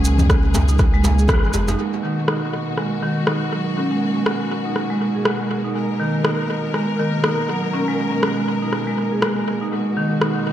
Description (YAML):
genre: afro house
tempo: 121 BPM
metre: 4/4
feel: swing 57% on 16ths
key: G# minor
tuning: A4 = 439 Hz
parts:
  - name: clear symphonic string section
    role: sustained chords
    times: 0.0-10.5 s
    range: B2 to A#4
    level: -26 LUFS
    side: left 2 dB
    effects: sidechain pumping
  - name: marimba with medium hard mallets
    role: arpeggios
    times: 0.0-10.5 s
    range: D#3 to G#4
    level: -21 LUFS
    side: right 1 dB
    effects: sidechain pumping, low-pass filter, tape echo
  - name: warm sub bass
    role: bass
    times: 0.0-1.8 s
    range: F#1 to C#2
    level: -18 LUFS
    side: equal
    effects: sidechain pumping
  - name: maracas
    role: percussion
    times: 0.0-1.8 s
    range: none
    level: -31 LUFS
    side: right 3 dB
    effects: dub echo
  - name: congas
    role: percussion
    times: 0.2-1.8 s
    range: none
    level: -29 LUFS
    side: left 2 dB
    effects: none
  - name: djembe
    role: percussion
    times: 0.2-1.8 s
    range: none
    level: -28 LUFS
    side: right 1 dB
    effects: dub echo
  - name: electronic kick drum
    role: drums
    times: 0.3-1.4 s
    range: none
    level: -19 LUFS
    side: equal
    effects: none
  - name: electronic rim click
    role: drums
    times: 0.3-10.3 s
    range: none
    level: -24 LUFS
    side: equal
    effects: low-pass filter on snare, dub echo
room: moderate spring reverb, RT60 1.6 s, small room ambience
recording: echo-heavy mix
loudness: -18 LUFS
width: side -11 dB against mid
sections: 0.0-1.8 A section; 1.8-10.5 B section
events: filter sweep on marimba 0.0-1.8, 1.8-10.5; band accent 1.3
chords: 0.0 G#m9